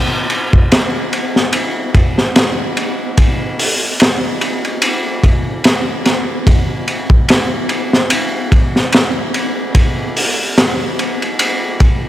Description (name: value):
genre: trip hop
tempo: 73 BPM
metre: 4/4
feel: swing 56% on 16ths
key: none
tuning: none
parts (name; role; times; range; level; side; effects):
- crunchy breakbeat drum kit; drums; 0.3-12.0 s; hi-hat, kick drum, ride cymbal, snare drum; -12 LUFS; equal; none
room: moderate huge ambient reverb, RT60 6.4 s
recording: none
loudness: -12 LUFS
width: side -13 dB against mid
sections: 0.0-12.1 A section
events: none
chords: none